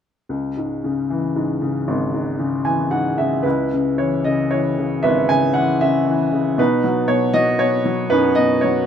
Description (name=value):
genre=classical, lyrical solo piano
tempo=116 BPM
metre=3/4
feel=rubato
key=C# minor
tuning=A4 = 437 Hz
part: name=clear upright piano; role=solo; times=0.3-8.9 s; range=G#1 to G#5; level=-16 LUFS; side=equal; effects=none
room=little or no reverb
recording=close, detailed microphones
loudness=-16 LUFS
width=side -8 dB against mid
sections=0.3-3.5 A section; 3.5-8.9 B section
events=upright piano fill 2.4-3.5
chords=0.3 C#m; 3.5 C#m7; 6.6 B